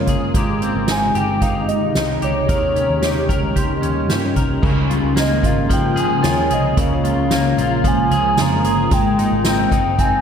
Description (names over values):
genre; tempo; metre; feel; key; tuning
dream pop; 112 BPM; 4/4; straight; unclear; A4 = 440 Hz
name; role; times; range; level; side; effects
hollow clarinet-like synth lead; melody; 0.0-10.2 s; Db5 to Bb5; -21 LUFS; equal; chorus, tape echo
shimmering ambient pad; sustained chords; 0.0-10.2 s; C3 to Bb4; -21 LUFS; right 1 dB; chorus, built-in reverb, phaser
electric guitar at the edge of break-up; arpeggios; 0.0-10.2 s; Db3 to Bb4; -21 LUFS; left 3 dB; analog chorus, tape echo
vintage muted fingered electric bass; bass; 0.0-10.2 s; G1 to G2; -24 LUFS; equal; none
soft-mallet drum kit; drums; 0.1-10.1 s; crash cymbal, hi-hat, kick drum, snare drum, tambourine; -21 LUFS; equal; none
large celesta; texture; 0.4-10.2 s; F4 to C6; -32 LUFS; right 2 dB; stereo widening, tape echo
room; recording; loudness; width
wet lush hall reverb, RT60 1.8 s, studio reverb; dreamy mix soaked in reverb; -15 LUFS; side -7 dB against mid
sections
0.0-4.6 A section; 4.6-10.2 B section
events
none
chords
0.3 Abmaj7; 2.5 Eb7; 4.6 Db6; 8.9 Abmaj7